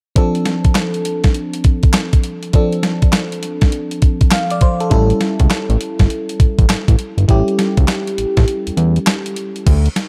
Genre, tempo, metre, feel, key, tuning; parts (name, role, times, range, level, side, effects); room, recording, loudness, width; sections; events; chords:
R&B, new jack swing; 101 BPM; 4/4; swing 64% on 16ths; D minor; A4 = 440 Hz
FM electric piano; accompaniment; 0.2-9.7 s; F3 to F5; -22 LUFS; equal; chorus, phaser
crisp 8-bit digital drum machine; drums; 0.2-10.1 s; crash cymbal, handclaps, hi-hat, kick drum, snare drum; -16 LUFS; equal
fat analog bass; bass; 4.9-9.9 s; G1 to E2; -17 LUFS; equal
little or no reverb; dark, warm production; -15 LUFS; mono
0.2-9.7 A section
break 8.5-9.7
0.2 Dm7; 4.9 A7